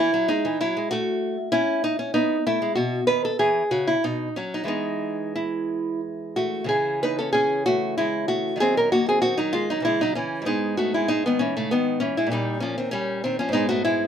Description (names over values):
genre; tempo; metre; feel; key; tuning
classical, baroque-style dance for nylon-string guitar; 89-100 BPM; 3/4; rubato; E major, C# minor from 6.7 s; A4 = 440 Hz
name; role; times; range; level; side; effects
nylon-string guitar; solo; 0.0-14.1 s; G#2 to B4; -21 LUFS; equal; none
room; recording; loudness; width
light reverb; band playing live in one room; -21 LUFS; side -8 dB against mid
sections
0.0-6.7 A section; 6.7-14.1 A section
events
none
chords
0.3 E; 0.9 A; 2.1 B; 3.4 E; 4.0 B; 4.7 E; 6.7 C#m; 8.6 Cdim/Eb; 9.8 C#m; 10.5 G#m; 12.3 A#m69; 13.5 G#m